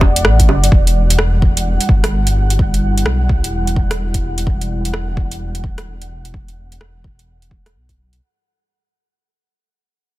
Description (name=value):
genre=future garage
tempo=128 BPM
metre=4/4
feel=swing 62% on 16ths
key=E minor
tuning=A4 = 444 Hz
part: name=dark analog pad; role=sustained chords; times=0.0-8.2 s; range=G3 to F#5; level=-25 LUFS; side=equal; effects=chorus, vintage 12-bit sampler grit, sidechain pumping
part: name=dark detuned saw bass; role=bass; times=0.0-8.2 s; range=E1 to B1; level=-16 LUFS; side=equal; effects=sidechain pumping
part: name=deep house drum kit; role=drums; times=0.0-8.2 s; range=bongos, hi-hat, rim click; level=-20 LUFS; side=right 2 dB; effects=overdrive, small room ambience
part: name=electronic kick drum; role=drums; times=0.0-8.0 s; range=none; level=-16 LUFS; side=equal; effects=overdrive, small room ambience
part: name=flickering grainy texture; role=texture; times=0.0-8.2 s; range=D5 to F#5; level=-28 LUFS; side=right 2 dB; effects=built-in reverb
room=little or no reverb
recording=dense, heavily limited modern master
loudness=-13 LUFS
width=side -17 dB against mid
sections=0.7-8.2 A section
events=fade-out 0.7-8.2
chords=0.0 Bm/E; 0.7 Em9